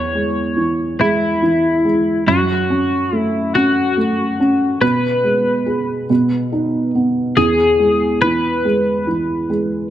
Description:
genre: pop.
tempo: 47 BPM (dotted quarters).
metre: 6/8.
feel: straight.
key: E major.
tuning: A4 = 441 Hz.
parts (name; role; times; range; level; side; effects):
twelve-string electric guitar; melody; 0.0-9.9 s; E4 to C#5; -17 LUFS; left 2 dB; analog chorus.
felt-muted upright piano; accompaniment; 0.0-9.9 s; E2 to G#4; -17 LUFS; right 1 dB; none.
room: wet recital hall reverb, RT60 1.6 s, small room ambience.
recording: dark, warm production.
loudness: -14 LUFS.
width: side -11 dB against mid.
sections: 0.0-9.9 A section.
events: none.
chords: 0.0 C#m/E; 2.3 F#m; 4.8 G#m/B; 6.1 B; 7.4 E.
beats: 1.00 | 2.27 3.55 | 4.82 6.09 | 7.37 8.64.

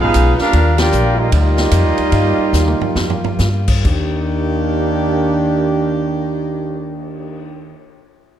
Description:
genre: jazz, big band swing.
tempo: 131-154 BPM.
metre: 4/4.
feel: swing 64% on 8ths.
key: Eb major.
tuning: A4 = 440 Hz.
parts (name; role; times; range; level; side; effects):
warm trumpet section; melody; 0.0-3.4 s; Bb3 to G5; -18 LUFS; right 1 dB; none.
mellow trombone section; second line; 0.0-7.7 s; Eb3 to G4; -19 LUFS; right 3 dB; none.
dark saxophone section; sustained chords; 0.0-7.7 s; Eb3 to G4; -25 LUFS; left 3 dB; none.
upright bass; bass; 0.0-7.7 s; Ab1 to G2; -17 LUFS; equal; none.
swinging big-band drum kit; drums; 0.1-7.4 s; crash cymbal, cymbal swell, hi-hat, kick drum, ride cymbal, snare drum, toms; -21 LUFS; equal; none.
room: moderate scoring stage reverb, RT60 1.6 s.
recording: dark, warm production.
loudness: -13 LUFS.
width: side -10 dB against mid.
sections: 0.0-3.8 A section; 3.8-7.5 B section.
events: slowing down 0.5-3.8; band accent 0.7; drum fill 2.5-3.4.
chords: 0.0 Db9; 0.5 Ebmaj9; 3.8 Ebmaj7.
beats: 0.14 | 0.53 0.92 1.31 1.71 | 2.12 2.53 2.96 3.39 | 3.85 4.30 4.76 5.22 | 5.68 6.14 6.60 7.06.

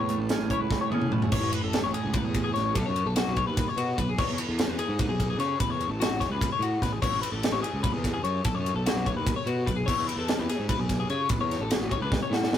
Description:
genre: math rock and midwest emo.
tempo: 294 BPM (eighths).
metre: 7/8.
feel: straight.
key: unclear.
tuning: A4 = 440 Hz.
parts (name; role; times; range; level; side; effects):
semi-hollow electric guitar; accompaniment; 0.0-2.8 s; A2 to E4; -31 LUFS; right 6 dB; none.
twelve-string electric guitar; arpeggios; 0.0-12.6 s; F#4 to C#5; -30 LUFS; left 7 dB; none.
fuzz fingered electric bass; bass; 0.0-12.6 s; A1 to C#3; -30 LUFS; right 1 dB; overdrive.
crisp fusion drum kit; drums; 0.1-12.6 s; crash cymbal, hi-hat, kick drum, ride cymbal, snare drum, toms; -28 LUFS; equal; none.
room: light reverb.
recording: rough rehearsal-room recording, warm saturation.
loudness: -24 LUFS.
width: side -10 dB against mid.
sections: 0.0-1.3 A section; 1.3-12.6 B section.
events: drum fill 0.7-1.3, 12.1-12.6.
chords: 0.0 Amaj9; 2.8 B7sus2; 4.2 E; 5.6 Amaj9; 8.5 B7sus2; 9.9 E; 11.3 Aadd9.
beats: 0.09 0.30 0.50 0.71 0.91 1.12 | 1.32 1.52 1.73 1.93 2.14 2.34 2.55 | 2.75 2.96 3.16 3.36 3.57 3.77 3.98 | 4.18 4.38 4.59 4.79 4.99 5.20 5.40 | 5.61 5.81 6.01 6.21 6.42 6.62 6.83 | 7.03 7.23 7.44 7.64 7.84 8.05 8.25 | 8.45 8.66 8.86 9.06 9.27 9.47 9.67 | 9.88 10.08 10.28 10.49 10.69 10.89 11.10 | 11.30 11.51 11.71 11.91 12.12 12.32 12.53.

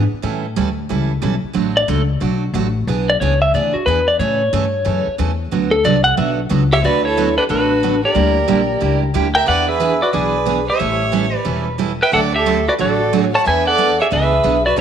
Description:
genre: country, western swing.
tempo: 182 BPM.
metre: 4/4.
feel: swing 63% on 8ths.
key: D major.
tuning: A4 = 439 Hz.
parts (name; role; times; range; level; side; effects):
picked steel-string acoustic guitar; accompaniment; 0.0-14.8 s; C#3 to A4; -21 LUFS; right 8 dB; none.
upright bass; bass; 0.0-14.8 s; E1 to A2; -20 LUFS; left 3 dB; none.
clean lap steel guitar; melody; 1.8-14.8 s; D4 to A5; -16 LUFS; left 1 dB; none.
clear fiddle; second line; 6.7-14.8 s; F#4 to F#5; -21 LUFS; right 6 dB; none.
room: moderate echo chamber reverb, RT60 1.6 s, small room ambience.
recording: 1960s-style stereo.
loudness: -14 LUFS.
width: side -8 dB against mid.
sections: 0.0-6.8 A section; 6.8-14.8 B section.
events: electric slide guitar solo 0.0-6.8.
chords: 0.2 A7; 1.6 D; 2.9 E7; 4.2 A; 5.5 D6; 8.2 Gm6; 9.5 E7; 10.8 A7; 12.1 D; 13.5 E7.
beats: | 0.25 0.57 0.90 1.23 | 1.56 1.89 2.22 2.55 | 2.88 3.21 3.54 3.87 | 4.20 4.53 4.86 5.19 | 5.52 5.85 6.18 6.51 | 6.84 7.17 7.50 7.83 | 8.16 8.49 8.82 9.15 | 9.48 9.82 10.15 10.48 | 10.81 11.14 11.47 11.80 | 12.13 12.46 12.80 13.13 | 13.46 13.79 14.12 14.45 | 14.78.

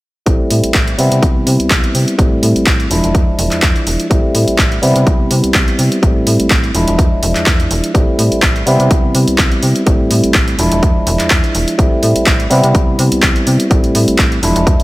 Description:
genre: filtered disco house.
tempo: 125 BPM.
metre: 4/4.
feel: swing 54% on 16ths.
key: A minor.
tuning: A4 = 440 Hz.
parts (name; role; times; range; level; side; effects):
tine electric piano; accompaniment; 0.3-14.8 s; F3 to E4; -15 LUFS; equal; phaser, sidechain pumping, low-pass filter.
slap-like FM bass; bass; 0.3-14.8 s; E1 to C3; -16 LUFS; equal; sidechain pumping, low-pass filter.
electronic kick drum; drums; 0.3-14.8 s; none; -13 LUFS; equal; overdrive.
punchy analog drum machine; drums; 0.3-14.8 s; handclaps, hi-hat; -17 LUFS; equal; overdrive, sidechain pumping on hats.
room: light reverb.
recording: none.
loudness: -10 LUFS.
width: side -19 dB against mid.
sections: 0.3-14.8 A section.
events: filter sweep 0.3-14.8.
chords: 0.3 Am7; 1.0 Cmaj7; 2.2 Am7; 2.9 E7b9; 4.1 Am7; 4.8 Cmaj7; 6.0 Am7; 6.7 E7b9; 7.9 Am7; 8.7 Cmaj7; 9.9 Am7; 10.6 E7b9; 11.8 Am7; 12.5 Cmaj7; 13.7 Am7.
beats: | 0.27 0.75 1.23 1.71 | 2.19 2.67 3.15 3.63 | 4.11 4.59 5.07 5.55 | 6.03 6.51 6.99 7.47 | 7.95 8.43 8.91 9.39 | 9.87 10.35 10.83 11.31 | 11.79 12.27 12.75 13.23 | 13.71 14.19 14.67.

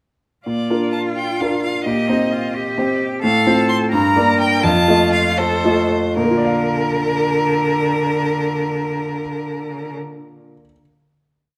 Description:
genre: quick classical-period movement for piano trio.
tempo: 75-89 BPM (dotted quarters).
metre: 6/8.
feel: rubato.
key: Bb major.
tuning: A4 = 440 Hz.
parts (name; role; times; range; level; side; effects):
clear violin; melody; 0.5-9.9 s; Bb4 to C6; -23 LUFS; equal; none.
clear cello; second line; 0.5-10.0 s; D3 to Bb4; -24 LUFS; equal; none.
warm concert grand piano; accompaniment; 0.5-10.8 s; F2 to F5; -21 LUFS; equal; none.
room: moderate recital hall reverb, RT60 1.5 s.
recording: none.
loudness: -18 LUFS.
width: mono.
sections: 0.5-6.2 A section; 6.2-9.2 final chord.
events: slowing down 2.5-6.2.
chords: 0.5 Bb; 1.9 Cm7/Bb; 3.2 F/A; 3.9 Gm; 4.6 F7; 6.2 Bb.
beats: | 0.47 1.17 | 1.86 2.54 | 3.22 3.92 | 4.63 5.38 | 6.17 6.92 | 7.68 8.44.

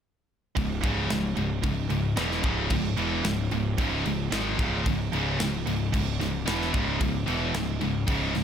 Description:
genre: heavy metal.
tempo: 112 BPM.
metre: 4/4.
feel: straight.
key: C# minor.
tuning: A4 = 440 Hz.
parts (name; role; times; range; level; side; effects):
heavy high-gain guitar; riff; 0.6-8.4 s; C#2 to G#3; -30 LUFS; right 11 dB; distortion.
scooped high-gain guitar; riff; 0.6-8.4 s; C#2 to G#3; -30 LUFS; left 9 dB; distortion.
fuzz picked electric bass; bass; 0.6-8.4 s; C#1 to G#1; -30 LUFS; equal; overdrive.
modern studio drum kit; drums; 0.6-8.4 s; crash cymbal, kick drum, snare drum; -31 LUFS; equal; none.
room: studio ambience.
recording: none.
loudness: -24 LUFS.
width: side -8 dB against mid.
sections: 0.6-8.4 A section.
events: none.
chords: 0.6 C#m.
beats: | 0.57 1.10 1.64 2.18 | 2.71 3.25 3.79 4.32 | 4.86 5.40 5.93 6.47 | 7.01 7.54 8.08.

